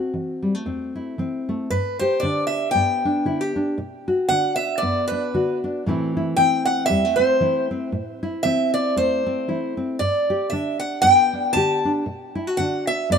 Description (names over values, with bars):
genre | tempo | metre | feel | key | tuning
folk | 116 BPM | 4/4 | swing 57% on 8ths | A dorian | A4 = 440 Hz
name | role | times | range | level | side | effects
nylon-string guitar | accompaniment | 0.0-13.2 s | E2 to G4 | -23 LUFS | left 1 dB | none
picked steel-string acoustic guitar | melody | 1.7-13.2 s | B4 to A5 | -20 LUFS | equal | none
room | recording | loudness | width
light reverb | minimal, uncompressed stereo recording | -19 LUFS | side -6 dB against mid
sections
0.0-1.7 A section; 1.7-13.2 B section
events
none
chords
0.0 Am; 1.7 G; 3.8 Bm; 5.8 Am; 10.0 G; 12.1 Bm